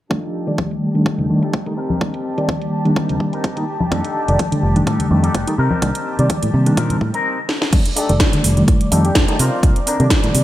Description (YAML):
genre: filtered disco house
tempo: 126 BPM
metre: 4/4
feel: swing 54% on 16ths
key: F mixolydian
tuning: A4 = 440 Hz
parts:
  - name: barky reed electric piano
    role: accompaniment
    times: 0.1-10.4 s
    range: Eb3 to D5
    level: -20 LUFS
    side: equal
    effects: overdrive, fast tremolo, phaser, sidechain pumping, low-pass filter
  - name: rich studio violin section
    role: sustained chords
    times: 0.1-10.4 s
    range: G4 to D6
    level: -29 LUFS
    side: equal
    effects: sidechain pumping, low-pass filter
  - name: electric guitar with an envelope filter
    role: riff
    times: 0.1-10.4 s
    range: F3 to Bb4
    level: -25 LUFS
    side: left 2 dB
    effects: lush chorus, sidechain pumping, low-pass filter
  - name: electronic kick drum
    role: drums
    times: 0.1-10.2 s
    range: none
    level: -18 LUFS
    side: equal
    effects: high-pass filter on kick, small room ambience
  - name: house drum kit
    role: drums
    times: 0.1-10.4 s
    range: crash cymbal, hi-hat, snare drum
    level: -21 LUFS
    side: right 1 dB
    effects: sidechain pumping on hats, low-pass filter on hats, small room ambience, low-pass filter on snare, sidechain pumping on cymbals, low-pass filter on cymbals, gated reverb
  - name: tambourine and congas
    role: percussion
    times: 0.1-7.2 s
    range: none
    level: -25 LUFS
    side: left 2 dB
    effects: sidechain pumping on perc, low-pass filter on perc
  - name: fingered electric bass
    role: bass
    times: 3.9-10.4 s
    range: F1 to D3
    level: -18 LUFS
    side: equal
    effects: sidechain pumping, low-pass filter
  - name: brilliant horn section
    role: melody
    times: 8.0-10.1 s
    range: D3 to A4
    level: -26 LUFS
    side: equal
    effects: vintage 12-bit sampler grit, sidechain pumping, low-pass filter
room: moderate lush hall reverb, RT60 1.9 s, digital ambience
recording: bright 1980s-style digital production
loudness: -15 LUFS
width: side -14 dB against mid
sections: 0.1-7.7 A section; 7.7-10.4 B section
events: filter sweep 0.1-7.7, 7.7-10.4; break 7.2-7.7; drum fill 7.5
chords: 0.1 F13; 1.8 Cm7; 3.9 F13; 5.6 Cm7; 7.7 F13; 9.4 Cm7